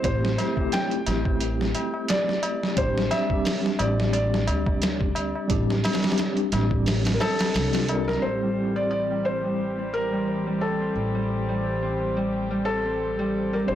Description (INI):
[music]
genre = trip hop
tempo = 88 BPM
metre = 4/4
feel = swing 56% on 16ths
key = A minor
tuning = A4 = 441 Hz
[part]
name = felt-muted upright piano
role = melody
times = 0.0-13.8 s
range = A4 to G5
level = -28 LUFS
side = equal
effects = tape echo
[part]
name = mellow tine electric piano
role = accompaniment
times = 0.0-13.8 s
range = G3 to Bb4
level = -29 LUFS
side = left 1 dB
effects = medium stereo tremolo, tape echo
[part]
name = upright bass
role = bass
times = 0.0-13.8 s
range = A1 to D2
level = -28 LUFS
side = equal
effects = tube saturation
[part]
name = trip hop sampler-style drum kit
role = drums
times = 0.0-8.2 s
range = hi-hat, kick drum, snare drum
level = -26 LUFS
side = equal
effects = overdrive
[part]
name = tabla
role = percussion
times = 0.0-8.2, 13.7-13.8 s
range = none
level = -35 LUFS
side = left 1 dB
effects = none
[part]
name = dark chamber string section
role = sustained chords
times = 8.2-13.8 s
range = D3 to G4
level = -31 LUFS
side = equal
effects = low-pass filter
[part]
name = Celtic harp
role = arpeggios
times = 8.4-13.8 s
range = G3 to C4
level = -28 LUFS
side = equal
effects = vintage 12-bit sampler grit, low-pass filter, digital delay
[sound]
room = moderate spring reverb, RT60 1.6 s, studio reverb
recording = blown-out, overdriven recording, overdrive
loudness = -22 LUFS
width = side -11 dB against mid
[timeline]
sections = 0.0-8.2 A section; 8.2-13.8 B section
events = kick drops out 6.9-8.2; filter sweep on string section 8.2-13.8; filter sweep on harp 8.2-13.8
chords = 0.0 Am7; 2.8 Csus2/A; 8.2 Am7